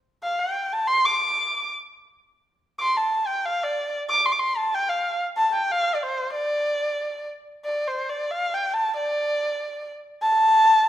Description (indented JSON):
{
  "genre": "chinese traditional",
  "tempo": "93 BPM",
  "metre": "2/4",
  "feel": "rubato",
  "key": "D yu mode",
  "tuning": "A4 = 441 Hz",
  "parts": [
    { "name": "dark erhu", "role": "solo", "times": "0.2-10.9 s", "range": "C5 to D6", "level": "-21 LUFS", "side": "equal", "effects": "none" }
  ],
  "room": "moderate recital hall reverb, RT60 1.4 s",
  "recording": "none",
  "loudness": "-21 LUFS",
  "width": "side -12 dB against mid",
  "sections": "0.0-7.6 A section; 7.6-10.9 B section",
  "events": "none",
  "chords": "none"
}